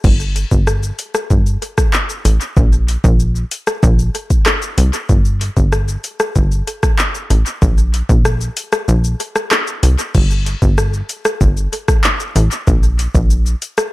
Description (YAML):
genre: dancehall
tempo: 95 BPM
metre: 4/4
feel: straight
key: unclear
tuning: A4 = 440 Hz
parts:
  - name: plucky analog bass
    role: bass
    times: 0.0-13.6 s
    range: G1 to C2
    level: -14 LUFS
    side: equal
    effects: none
  - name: afro-pop drum kit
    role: drums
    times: 0.0-13.9 s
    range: crash cymbal, handclaps, hi-hat, kick drum, rim click, shaker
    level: -14 LUFS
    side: equal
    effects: tape echo
room: digital ambience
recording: echo-heavy mix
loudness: -13 LUFS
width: side -18 dB against mid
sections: 0.0-10.1 A section; 10.1-13.9 B section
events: kick muted 8.9-10.1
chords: none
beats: | 0.04 0.67 1.30 1.94 | 2.57 3.20 3.83 4.46 | 5.09 5.72 6.36 6.99 | 7.62 8.25 8.88 9.52 | 10.15 10.78 11.41 12.04 | 12.67 13.30